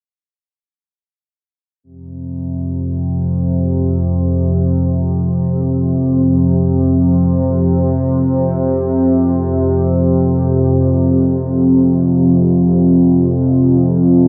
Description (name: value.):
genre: ambient.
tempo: free time.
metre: none.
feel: none.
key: unclear.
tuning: A4 = 442 Hz.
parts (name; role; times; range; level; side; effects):
analog drone; solo; 2.1-14.3 s; F2 to C3; -14 LUFS; equal; chorus, diffuse ambient delay.
room: wet huge ambient reverb, RT60 7.9 s.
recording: none.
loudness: -14 LUFS.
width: mono.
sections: 1.8-14.3 A section.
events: none.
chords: 1.8 F5.